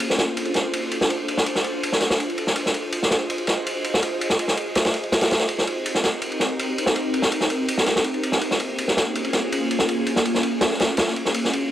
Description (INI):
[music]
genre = drum and bass, jungle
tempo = 164 BPM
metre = 4/4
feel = straight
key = unclear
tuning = A4 = 440 Hz
[part]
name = ethereal airy pad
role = sustained chords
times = 0.0-11.7 s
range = Bb3 to Eb5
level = -26 LUFS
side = equal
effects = ensemble chorus, built-in reverb
[part]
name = vintage drum kit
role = drums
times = 0.0-11.6 s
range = ride cymbal, snare drum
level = -21 LUFS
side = equal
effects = high-pass filter on cymbals, high-pass filter on snare, high-pass filter on room
[sound]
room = light reverb, small room ambience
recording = dry, gritty hardware recording, transformer saturation, vinyl crackle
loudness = -20 LUFS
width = side -12 dB against mid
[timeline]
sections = 0.0-11.7 A section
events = none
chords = 0.0 Dm7; 2.6 Fm7; 5.5 Cm7; 8.4 Bbm7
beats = 0.00 0.37 0.73 | 1.10 1.47 1.83 2.20 | 2.56 2.93 3.29 3.66 | 4.03 4.39 4.76 5.12 | 5.49 5.86 6.22 6.59 | 6.95 7.32 7.68 8.05 | 8.42 8.78 9.15 9.51 | 9.88 10.24 10.61 10.98 | 11.34 11.71